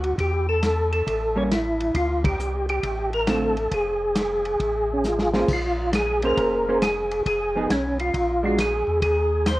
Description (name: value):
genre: soul jazz organ trio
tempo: 136 BPM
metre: 4/4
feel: swing 67% on 8ths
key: Bb minor from 5.5 s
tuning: A4 = 440 Hz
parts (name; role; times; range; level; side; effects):
- percussive tonewheel organ; melody; 0.0-9.6 s; C#4 to C#5; -23 LUFS; equal; slow rotary speaker, chorus vibrato
- tonewheel organ; bass; 0.0-9.6 s; F1 to E2; -28 LUFS; equal; slow rotary speaker
- warm soul drum kit; drums; 0.0-9.6 s; crash cymbal, hi-hat, kick drum, ride cymbal, snare drum; -29 LUFS; equal; none
- vintage hollow-body jazz guitar; accompaniment; 1.4-8.6 s; D3 to C5; -25 LUFS; right 1 dB; none
room: moderate large studio reverb, RT60 1.1 s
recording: worn, warbling old tape, cassette tape, warbly pitch drift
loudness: -20 LUFS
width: side -17 dB against mid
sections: 0.0-5.5 A section; 5.5-9.6 B section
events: band accent 2.2; drum fill 5.0-5.5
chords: 0.2 Emadd11; 1.1 A7b9; 1.9 Dm7; 3.7 F; 5.5 Bbm9; 7.3 Fm7b5; 8.1 Bb7b13; 9.0 N.C.